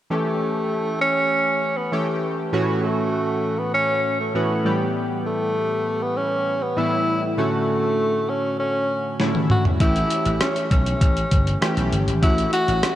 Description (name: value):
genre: 1980s-style pop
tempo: 99 BPM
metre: 4/4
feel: straight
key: A mixolydian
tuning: A4 = 439 Hz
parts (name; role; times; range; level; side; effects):
- breathy tenor saxophone; melody; 0.1-13.0 s; A3 to F#4; -22 LUFS; equal; none
- chorused retro synth keys; accompaniment; 0.1-13.0 s; A2 to G4; -24 LUFS; equal; none
- clean 12-bit digital drum machine; drums; 9.2-13.0 s; hi-hat, kick drum, rim click, snare drum, toms; -21 LUFS; equal; none
- vintage slap bass; bass; 9.8-12.8 s; G1 to B1; -23 LUFS; equal; none
room: moderate lush hall reverb, RT60 2.7 s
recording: big arena sound, cassette tape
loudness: -19 LUFS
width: side -12 dB against mid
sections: 0.1-13.0 A section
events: drum fill 9.2-9.8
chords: 0.1 A7; 2.5 F#m7/A; 4.7 Em/A; 7.4 Dmaj7/A; 9.8 A7; 12.2 F#m7/A